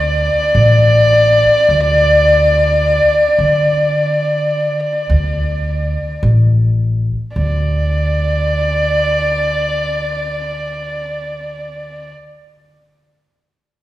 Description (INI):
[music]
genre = Arabic maqam ensemble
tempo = free time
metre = none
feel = none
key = unclear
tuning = A4 = 445 Hz
[part]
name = dark violin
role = melody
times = 0.0-12.1 s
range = D5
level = -14 LUFS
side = equal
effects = none
[part]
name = upright bass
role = bass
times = 0.0-12.1 s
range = A1 to D3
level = -16 LUFS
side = equal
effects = none
[sound]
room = wet recital hall reverb, RT60 1.7 s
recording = recorded in a church or concert hall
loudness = -12 LUFS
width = side -15 dB against mid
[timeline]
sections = 0.0-7.4 A section; 7.4-13.0 B section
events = none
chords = none